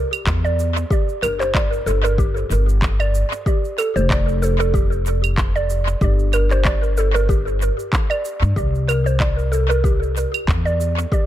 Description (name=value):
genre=organic downtempo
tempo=94 BPM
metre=4/4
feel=swing 55% on 16ths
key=G dorian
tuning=A4 = 443 Hz
part: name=upright bass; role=bass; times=0.0-11.0 s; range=F1 to G2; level=-19 LUFS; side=equal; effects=sidechain pumping
part: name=electronic claves, shaker and handclaps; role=drums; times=0.1-11.3 s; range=none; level=-27 LUFS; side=right 1 dB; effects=tape echo
part: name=electronic kick drum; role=drums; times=0.3-11.3 s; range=none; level=-20 LUFS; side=equal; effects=overdrive
part: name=mallet-like synth pluck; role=arpeggios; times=0.4-11.3 s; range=G4 to D5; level=-22 LUFS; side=right 1 dB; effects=chorus, cassette tape, tape echo
room=light reverb, digital ambience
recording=echo-heavy mix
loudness=-16 LUFS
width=side -13 dB against mid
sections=0.0-11.3 A section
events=none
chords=0.0 N.C.; 0.9 G5; 3.5 F; 6.0 G5; 8.6 C